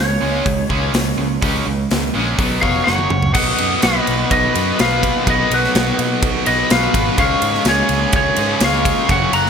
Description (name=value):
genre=hard rock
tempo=125 BPM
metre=4/4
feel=straight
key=unclear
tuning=A4 = 441 Hz
part: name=lightly driven lead guitar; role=melody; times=0.0-9.5 s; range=Cb5 to Bb5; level=-19 LUFS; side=left 2 dB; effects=ping-pong delay
part: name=crunchy overdriven guitar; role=riff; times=0.0-9.5 s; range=Gb2 to Db4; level=-23 LUFS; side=left 12 dB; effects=tremolo
part: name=tight distorted guitar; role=riff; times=0.0-9.5 s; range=Gb2 to Db4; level=-22 LUFS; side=right 10 dB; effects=distortion
part: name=picked electric bass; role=bass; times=0.0-9.5 s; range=F1 to Cb3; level=-23 LUFS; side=equal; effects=none
part: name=big rock drum kit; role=drums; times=0.5-9.5 s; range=crash cymbal, hi-hat, kick drum, ride cymbal, snare drum, toms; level=-19 LUFS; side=equal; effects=none
part: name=octave-fuzz lead guitar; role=second line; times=2.6-9.5 s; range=Gb4 to Gb5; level=-24 LUFS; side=right 2 dB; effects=distortion
room=moderate plate reverb, RT60 2.6 s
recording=bright 1980s-style digital production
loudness=-14 LUFS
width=side -7 dB against mid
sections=0.0-3.4 A section; 3.4-9.5 B section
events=drum fill 2.9-3.4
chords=0.0 Db5; 2.4 Cb5; 2.9 Gb5; 3.4 Cb; 7.2 Db